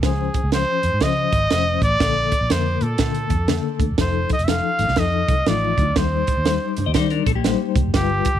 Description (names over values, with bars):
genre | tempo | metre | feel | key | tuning
uptempo 1960s-style soul | 121 BPM | 4/4 | swing 64% on 8ths | unclear | A4 = 438 Hz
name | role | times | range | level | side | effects
clear trumpet | melody | 0.0-8.4 s | G4 to F5 | -22 LUFS | equal | tape echo
reed electric piano | accompaniment | 0.0-8.3 s | D3 to D5 | -25 LUFS | left 12 dB | fast tremolo
vintage muted fingered electric bass | bass | 0.0-8.4 s | E1 to Eb3 | -23 LUFS | equal | none
compact cocktail drum kit | drums | 0.0-8.3 s | hi-hat, kick drum, snare drum | -22 LUFS | right 3 dB | none
congas | percussion | 4.3-8.3 s | none | -34 LUFS | right 12 dB | none
clean electric guitar | riff | 6.9-7.9 s | Bb3 to Eb5 | -25 LUFS | left 15 dB | phaser
room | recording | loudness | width
small room ambience | 1960s-style stereo with parts hard left and right | -17 LUFS | side -10 dB against mid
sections
0.0-8.4 A section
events
none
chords
0.0 Dbmaj7; 2.0 Bbmaj7; 4.0 F7; 6.0 Eb6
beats
| 0.02 0.52 1.01 1.51 | 2.00 2.50 2.99 3.49 | 3.98 4.48 4.97 5.47 | 5.96 6.46 6.95 7.45 | 7.94